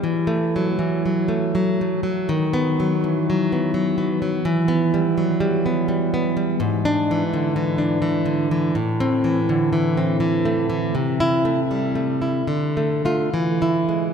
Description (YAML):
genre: romantic piece for solo classical guitar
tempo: 69-88 BPM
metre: 3/4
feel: rubato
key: E minor, A minor from 6.6 s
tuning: A4 = 445 Hz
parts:
  - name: nylon-string guitar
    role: solo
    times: 0.0-14.1 s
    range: G#2 to F4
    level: -18 LUFS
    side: equal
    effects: none
room: wet cathedral reverb, RT60 5.7 s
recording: in a vast, echoing space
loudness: -18 LUFS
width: side -7 dB against mid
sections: 0.0-14.1 A section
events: none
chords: 0.0 Esus24; 2.3 B/D#; 4.4 Em; 6.6 E7/G#; 8.7 Am; 10.9 Am/C; 12.4 Dm; 13.3 E